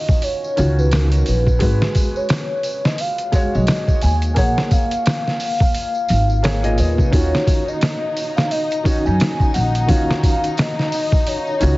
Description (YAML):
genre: trip hop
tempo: 87 BPM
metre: 4/4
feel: swing 59% on 16ths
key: Eb minor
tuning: A4 = 440 Hz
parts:
  - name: pure breathy sine lead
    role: melody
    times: 0.0-11.8 s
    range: Bb4 to Ab5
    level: -23 LUFS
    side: equal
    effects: analog chorus, dub echo
  - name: felt-muted upright piano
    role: accompaniment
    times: 0.0-11.8 s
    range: Bb2 to Eb5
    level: -24 LUFS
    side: equal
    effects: harmonic tremolo, low-pass filter, tape echo
  - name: trip hop sampler-style drum kit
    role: drums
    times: 0.1-11.8 s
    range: hi-hat, kick drum, snare drum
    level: -18 LUFS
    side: equal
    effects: vintage 12-bit sampler grit
  - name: triangle and tambourine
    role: percussion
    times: 0.1-11.8 s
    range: none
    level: -37 LUFS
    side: equal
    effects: none
  - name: upright bass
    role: bass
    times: 0.6-11.8 s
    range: F1 to Gb2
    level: -17 LUFS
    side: equal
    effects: none
  - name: dark studio string section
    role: sustained chords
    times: 7.1-11.8 s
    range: Eb4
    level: -28 LUFS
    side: left 2 dB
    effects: none
room: little or no reverb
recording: heavily compressed radio sound, multiband compression, vinyl crackle, nothing above 7.8 kHz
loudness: -15 LUFS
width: side -20 dB against mid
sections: 0.0-11.8 A section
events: none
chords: 0.0 Ebm9; 1.6 Abm7; 4.4 Bbm7; 7.1 Ebm9